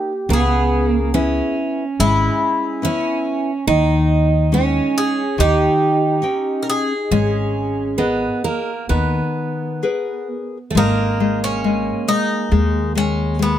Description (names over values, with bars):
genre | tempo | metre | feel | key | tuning
fado-style ballad | 69 BPM | 4/4 | rubato | G# harmonic minor | A4 = 438 Hz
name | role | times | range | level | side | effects
Irish bouzouki | melody | 0.0-13.6 s | B3 to A#4 | -21 LUFS | equal | none
picked twelve-string acoustic guitar | second line | 0.0-13.6 s | A3 to D#4 | -22 LUFS | right 4 dB | none
nylon-string guitar | accompaniment | 0.0-13.6 s | C#3 to G5 | -21 LUFS | left 4 dB | none
upright bass | bass | 0.3-13.6 s | G#1 to D#2 | -20 LUFS | equal | none
room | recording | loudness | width
little or no reverb | close, detailed microphones | -16 LUFS | side -11 dB against mid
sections
0.0-10.8 A section; 10.8-13.6 B section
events
none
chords
0.3 C#m7; 3.7 D#7sus4; 5.4 D#7; 7.1 G#madd9; 10.8 G#sus2